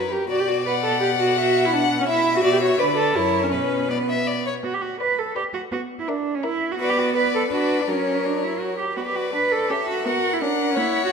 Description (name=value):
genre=quick classical-period movement for string quartet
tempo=166 BPM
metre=3/4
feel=straight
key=B minor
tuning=A4 = 440 Hz
part: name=clear violin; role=melody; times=0.0-11.1 s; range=B4 to F#5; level=-26 LUFS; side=left 9 dB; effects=none
part: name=clear violin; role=second line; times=0.0-11.1 s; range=A4 to F#5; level=-27 LUFS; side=left 3 dB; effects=none
part: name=rich cello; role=bass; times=0.0-11.1 s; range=F#2 to B4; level=-25 LUFS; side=right 5 dB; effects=none
part: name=clear viola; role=accompaniment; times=0.1-11.1 s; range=F#3 to B4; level=-23 LUFS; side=right 2 dB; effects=none
room=moderate scoring stage reverb, RT60 2.2 s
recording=minimal, uncompressed stereo recording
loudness=-19 LUFS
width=side -6 dB against mid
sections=0.0-4.6 A section; 4.6-11.1 A section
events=none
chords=0.3 Bm; 1.4 Bmadd11; 2.4 Bm; 2.8 Bm/D; 3.2 F#7; 3.5 Bm; 5.7 F#7/B (rootless); 6.8 Bm; 7.5 Bm/D; 7.9 F#; 9.0 Bm; 10.1 F#7/B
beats=| 0.29 0.66 1.01 | 1.37 1.73 2.08 | 2.44 2.80 3.16 | 3.53 3.90 4.28 | 4.65 5.01 5.37 | 5.73 6.08 6.44 | 6.80 7.16 7.52 | 7.88 8.25 8.61 | 8.97 9.34 9.70 | 10.06 10.42 10.77